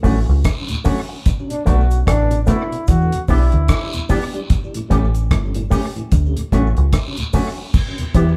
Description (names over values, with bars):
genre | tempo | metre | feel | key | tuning
roots reggae | 74 BPM | 4/4 | swing 59% on 16ths | unclear | A4 = 440 Hz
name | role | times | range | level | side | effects
electric guitar with an envelope filter | accompaniment | 0.0-8.3 s | A3 to G4 | -26 LUFS | equal | none
mellow tonewheel organ | accompaniment | 0.0-8.2 s | D2 to D4 | -28 LUFS | equal | slow rotary speaker, analog delay
deep dub fingered electric bass | bass | 0.0-8.4 s | G1 to E2 | -18 LUFS | equal | none
deep reggae drum kit | drums | 0.0-8.4 s | crash cymbal, hi-hat, kick drum, rim click | -21 LUFS | equal | none
cabasa and guiro | percussion | 0.0-8.4 s | none | -36 LUFS | equal | analog delay
breathy trombone | second line | 1.5-4.1 s | D4 to F#4 | -26 LUFS | equal | none
room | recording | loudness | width
moderate large studio reverb, RT60 0.8 s | band playing live in one room | -18 LUFS | mono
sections
0.0-7.7 A section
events
none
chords
0.0 Dmaj7; 1.3 Bm7; 2.9 Em7; 4.5 A7; 6.1 Dmaj7; 7.7 Em